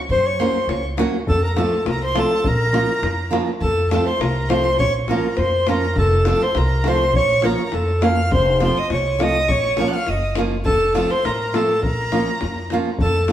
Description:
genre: balkan folk, Balkan wedding band.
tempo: 102 BPM.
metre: 2/4.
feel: straight.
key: Bb harmonic minor.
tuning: A4 = 441 Hz.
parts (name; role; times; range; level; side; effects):
mellow clarinet; melody; 0.1-13.3 s; A4 to Gb5; -21 LUFS; left 1 dB; none.
bright violin; second line; 0.1-13.3 s; A5 to Gb6; -26 LUFS; right 1 dB; tape echo.
upright bass; bass; 0.1-13.3 s; F1 to Gb2; -23 LUFS; equal; none.
davul; percussion; 0.1-13.3 s; none; -25 LUFS; left 2 dB; none.
flamenco guitar; accompaniment; 0.4-13.3 s; F3 to Gb4; -24 LUFS; right 3 dB; none.
room: wet stone room reverb, RT60 1.2 s.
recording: band playing live in one room.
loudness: -16 LUFS.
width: side -11 dB against mid.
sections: 0.0-3.6 A section; 3.6-13.0 B section.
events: none.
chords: 0.0 Gb; 1.3 F; 2.4 Bbm; 3.6 F; 4.8 Bbm; 6.0 F; 7.1 Bbm; 8.3 F; 9.5 Bbm; 10.7 F; 11.8 Bbm.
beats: | 0.10 0.69 | 1.27 1.86 | 2.45 3.04 | 3.62 4.21 | 4.80 5.38 | 5.97 6.55 | 7.14 7.73 | 8.31 8.90 | 9.49 10.07 | 10.66 11.24 | 11.83 12.42 | 13.00.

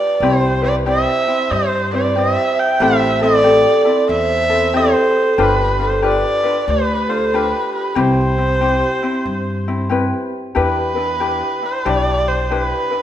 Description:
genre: Hawaiian.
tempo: 93 BPM.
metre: 4/4.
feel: swing 63% on 8ths.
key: C major.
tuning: A4 = 439 Hz.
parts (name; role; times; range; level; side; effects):
warm erhu; melody; 0.0-13.0 s; B4 to G5; -18 LUFS; right 1 dB; none.
vibraphone with medium mallets; second line; 0.0-9.9 s; G4 to E5; -20 LUFS; right 2 dB; none.
ukulele; accompaniment; 0.0-13.0 s; C4 to B4; -19 LUFS; left 3 dB; none.
upright bass; bass; 0.2-12.7 s; G1 to G2; -22 LUFS; left 1 dB; none.
room: wet recital hall reverb, RT60 1.6 s.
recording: minimal, uncompressed stereo recording.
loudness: -14 LUFS.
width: side -11 dB against mid.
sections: 0.0-10.6 A section; 10.6-13.0 B section.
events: none.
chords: 0.2 Cmaj7; 2.8 Am7; 5.4 G7; 8.0 Cmaj7; 10.6 Em7.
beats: | 0.22 0.86 1.51 2.15 | 2.80 3.45 4.09 4.74 | 5.39 6.03 6.68 7.33 | 7.97 8.62 9.27 9.92 | 10.57 11.22 11.87 12.51.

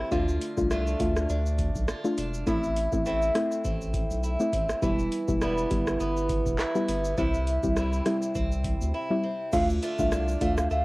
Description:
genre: dancehall.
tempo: 102 BPM.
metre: 4/4.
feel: swing 56% on 16ths.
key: D dorian.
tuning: A4 = 440 Hz.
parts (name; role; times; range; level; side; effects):
picked swing-style acoustic guitar; arpeggios; 0.0-10.8 s; A2 to F4; -30 LUFS; right 1 dB; cassette tape.
soft round pluck; accompaniment; 0.1-10.7 s; G3 to F4; -29 LUFS; left 1 dB; chorus, cassette tape.
saturated sub bass; bass; 0.1-10.8 s; E1 to D2; -30 LUFS; equal; none.
booming analog drum machine; drums; 0.1-10.8 s; crash cymbal, handclaps, hi-hat, kick drum, rim click, shaker; -31 LUFS; equal; none.
mellow hollow wooden flute; melody; 9.5-10.8 s; E5 to F5; -29 LUFS; right 1 dB; tape echo.
tube shaker; percussion; 9.5-10.8 s; none; -50 LUFS; right 5 dB; none.
room: light reverb.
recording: home recording on cassette.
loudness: -24 LUFS.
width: side -21 dB against mid.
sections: 0.1-9.5 A section; 9.5-10.8 B section.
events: none.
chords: 0.1 Dm; 2.5 Am; 4.8 Em; 7.2 C; 9.5 Dm.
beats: | 0.12 0.71 1.29 1.88 | 2.47 3.06 3.65 4.24 | 4.82 5.41 6.00 6.59 | 7.18 7.76 8.35 8.94 | 9.53 10.12 10.71.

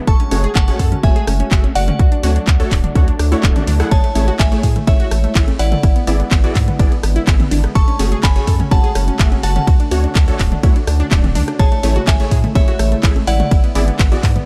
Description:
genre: progressive house.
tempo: 125 BPM.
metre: 4/4.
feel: straight.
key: A major.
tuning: A4 = 440 Hz.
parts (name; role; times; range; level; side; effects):
warm analog pad; sustained chords; 0.0-14.5 s; C#3 to F#4; -31 LUFS; equal; none.
unison pluck; arpeggios; 0.0-14.4 s; A3 to A4; -28 LUFS; equal; sidechain pumping, digital delay.
glassy synth bell; melody; 0.1-14.5 s; C#5 to C#6; -27 LUFS; equal; chorus, sidechain pumping, digital delay.
soft round pluck; second line; 0.1-14.5 s; E5 to C#6; -36 LUFS; equal; none.
round analog bass; bass; 0.1-14.4 s; D1 to A2; -20 LUFS; equal; tube saturation, sidechain pumping.
electronic kick drum; drums; 0.1-14.3 s; none; -16 LUFS; equal; overdrive.
pop drum kit; drums; 0.1-14.5 s; handclaps, hi-hat, ride cymbal, rim click; -27 LUFS; equal; sidechain pumping on hats, sidechain pumping on cymbals.
supersaw stab; stabs; 0.3-14.2 s; A3 to F#5; -28 LUFS; equal; sidechain pumping, digital delay.
electronic congas and toms; percussion; 0.3-14.5 s; none; -27 LUFS; equal; sidechain pumping on perc, sidechain pumping on toms.
swell; sound effects; 3.1-3.9 s; none; -33 LUFS; equal; none.
room: little or no reverb.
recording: dark, warm production, faint mains hum.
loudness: -15 LUFS.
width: mono.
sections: 0.0-14.5 A section.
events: swell 3.1-3.9.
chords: 0.1 F#madd9; 2.0 Dmaj7; 3.9 Amaj7; 5.8 E7/G#; 7.8 F#madd9; 9.7 Dmaj7; 11.6 Amaj7; 13.5 E7/G#.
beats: | 0.07 0.55 1.03 1.51 | 1.99 2.47 2.95 3.43 | 3.91 4.39 4.87 5.35 | 5.83 6.31 6.79 7.27 | 7.75 8.23 8.71 9.19 | 9.67 10.15 10.63 11.11 | 11.59 12.07 12.55 13.03 | 13.51 13.99.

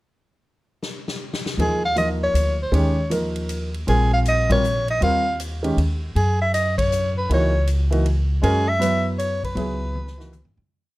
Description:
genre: modal jazz.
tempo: 158 BPM.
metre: 3/4.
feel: swing 64% on 8ths.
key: unclear.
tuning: A4 = 444 Hz.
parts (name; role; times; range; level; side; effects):
swinging big-band drum kit; drums; 0.8-10.7 s; hi-hat, kick drum, ride cymbal, snare drum, toms; -32 LUFS; left 1 dB; none.
warm soprano saxophone; melody; 1.6-10.5 s; Ab4 to F5; -22 LUFS; equal; none.
warm baby grand piano; accompaniment; 1.6-10.3 s; Eb3 to Cb5; -24 LUFS; equal; none.
upright bass; bass; 1.6-10.7 s; Bb1 to Db3; -22 LUFS; equal; none.
room: light reverb.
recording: dark, warm production.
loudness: -18 LUFS.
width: side -18 dB against mid.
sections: 0.4-1.6 pickup bar; 1.6-10.7 A section.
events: drum fill 0.8-1.6, 9.9-10.7; band accent 4.4, 6.7; fade-out 8.9-10.7.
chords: 0.4 N.C.; 1.6 Eb9sus4; 6.2 Gb9sus4.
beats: | 0.43 0.82 1.20 | 1.58 1.96 2.35 | 2.73 3.11 3.49 | 3.87 4.25 4.63 | 5.01 5.39 5.77 | 6.15 6.53 6.91 | 7.29 7.67 8.05 | 8.43 8.80 9.18 | 9.56 9.94 10.32.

